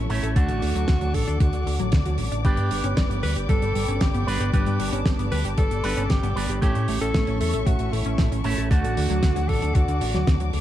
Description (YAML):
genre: italo disco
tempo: 115 BPM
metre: 4/4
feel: straight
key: G lydian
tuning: A4 = 440 Hz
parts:
  - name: bright alto saxophone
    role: melody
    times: 0.0-10.5 s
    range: E4 to B4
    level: -30 LUFS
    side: equal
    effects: vintage 12-bit sampler grit, ping-pong delay
  - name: dark studio string section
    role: sustained chords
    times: 0.0-10.6 s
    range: A4 to D6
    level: -34 LUFS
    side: left 2 dB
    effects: none
  - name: analog pluck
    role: arpeggios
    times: 0.0-10.6 s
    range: D3 to A4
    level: -31 LUFS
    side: equal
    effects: chorus, phaser, vintage 12-bit sampler grit, tape echo
  - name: electric guitar with an envelope filter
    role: stabs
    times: 0.0-10.0 s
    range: A3 to B4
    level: -31 LUFS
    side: right 4 dB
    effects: spring reverb
  - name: overdriven fingered electric bass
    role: bass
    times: 0.0-10.6 s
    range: G1 to A2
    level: -25 LUFS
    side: equal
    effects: none
  - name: damped 70s drum kit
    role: drums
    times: 0.1-10.6 s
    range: hi-hat, snare drum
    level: -30 LUFS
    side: right 1 dB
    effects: none
  - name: electronic kick drum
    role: drums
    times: 0.4-10.4 s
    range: none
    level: -22 LUFS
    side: equal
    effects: overdrive
room: light reverb, small room ambience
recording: dark, warm production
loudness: -20 LUFS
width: side -12 dB against mid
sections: 0.0-10.6 A section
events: none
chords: 0.4 D; 2.4 G; 6.6 A; 8.7 D